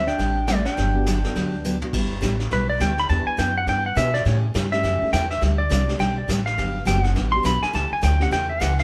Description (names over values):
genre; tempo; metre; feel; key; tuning
country, western swing; 207 BPM; 4/4; swing 61% on 8ths; G major; A4 = 440 Hz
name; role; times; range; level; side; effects
pedal steel guitar; melody; 0.0-8.8 s; B4 to C6; -26 LUFS; equal; none
hollow-body jazz guitar; second line; 0.0-1.8 s; A3 to D4; -32 LUFS; equal; none
upright bass; bass; 0.0-8.8 s; F#1 to B2; -26 LUFS; equal; none
vintage brush drum kit; drums; 0.1-8.8 s; brushed snare drum, crash cymbal, hi-hat, kick drum, snare drum, toms; -33 LUFS; equal; none
picked steel-string acoustic guitar; accompaniment; 0.2-8.7 s; C#3 to G4; -30 LUFS; equal; none
dark upright piano; accompaniment; 0.9-8.3 s; G3 to A4; -34 LUFS; equal; none
room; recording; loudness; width
moderate studio reverb, RT60 0.7 s; band playing live in one room; -22 LUFS; mono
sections
0.0-1.9 A section; 1.9-8.8 B section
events
drum fill 1.6; pedal steel guitar solo 1.9-8.8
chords
0.0 D7sus4; 0.8 Gmaj7; 1.9 G6; 3.1 Em7; 4.3 A7; 5.4 D7sus4; 6.6 Gmaj7; 7.7 A7